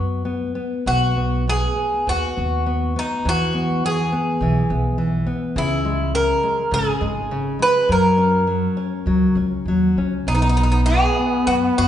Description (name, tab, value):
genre	fado-style ballad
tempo	102 BPM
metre	4/4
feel	rubato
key	B major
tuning	A4 = 440 Hz
part	Greek bouzouki	melody	0.0-11.9 s	D#4 to B4	-20 LUFS	equal	none
part	nylon-string guitar	accompaniment	0.0-11.9 s	C#3 to C#4	-22 LUFS	left 2 dB	none
part	upright bass	bass	0.0-11.9 s	G#1 to F#2	-23 LUFS	right 1 dB	none
part	trumpet with bucket mute	second line	10.3-11.9 s	B3	-21 LUFS	left 1 dB	none
room	wet recital hall reverb, RT60 1.4 s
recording	recorded in a church or concert hall, nothing above 10.5 kHz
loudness	-17 LUFS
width	side -10 dB against mid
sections	0.0-11.9 A section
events	none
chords	0.0 B5; 0.9 G#m7/B; 3.2 Eadd9; 5.6 C#m; 7.9 F#; 10.3 B5